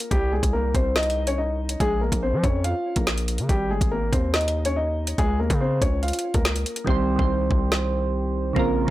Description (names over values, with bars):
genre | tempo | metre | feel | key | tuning
hip hop, drill | 142 BPM | 4/4 | half-time | C phrygian | A4 = 440 Hz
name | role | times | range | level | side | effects
dark concert grand piano | melody | 0.0-6.8 s | G3 to F5 | -25 LUFS | left 1 dB | digital delay
drill drum kit | drums | 0.0-8.9 s | hi-hat, kick drum, snare drum | -24 LUFS | equal | none
distorted 808-style bass | bass | 0.1-8.9 s | G1 to F3 | -25 LUFS | equal | distortion
soft electric-piano-like synth keys | accompaniment | 6.8-8.9 s | Db3 to C5 | -23 LUFS | right 3 dB | chorus
room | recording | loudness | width
little or no reverb | blown-out, overdriven recording, overdrive | -21 LUFS | side -15 dB against mid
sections
0.0-8.9 A section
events
hi-hats muted 6.9-8.9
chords
0.1 Cm; 1.8 Bbmadd9; 3.5 Ab; 5.2 Db; 6.9 Cm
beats
| 0.11 0.54 0.96 1.38 | 1.80 2.23 2.65 3.07 | 3.49 3.92 4.34 4.76 | 5.18 5.61 6.03 6.45 | 6.87 7.29 7.72 8.14 | 8.56